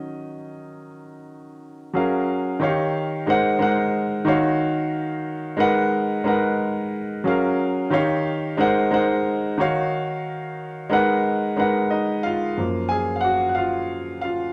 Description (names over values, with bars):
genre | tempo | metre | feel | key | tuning
soul | 90 BPM | 4/4 | straight | Eb minor | A4 = 440 Hz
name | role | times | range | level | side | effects
warm concert grand piano | solo | 0.0-14.5 s | Gb2 to Ab5 | -23 LUFS | equal | none
room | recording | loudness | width
moderate large studio reverb, RT60 1.0 s | band playing live in one room | -22 LUFS | mono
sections
0.0-1.9 A section; 1.9-12.6 B section; 12.6-14.5 A section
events
grand piano solo 0.0-1.9, 12.6-14.5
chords
0.0 Ebm7; 1.9 Gbmaj9; 2.6 Eb9; 3.3 Ab7; 4.3 Ebm7; 5.6 Abm7; 7.3 Gbmaj9; 7.9 Eb9; 8.6 Ab7; 9.6 Ebm7; 10.9 Abm7; 12.6 Gbmaj7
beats
0.62 1.28 | 1.95 2.61 3.27 3.94 | 4.60 5.27 5.93 6.59 | 7.26 7.92 8.59 9.25 | 9.92 10.58 11.24 11.91 | 12.57 13.24 13.91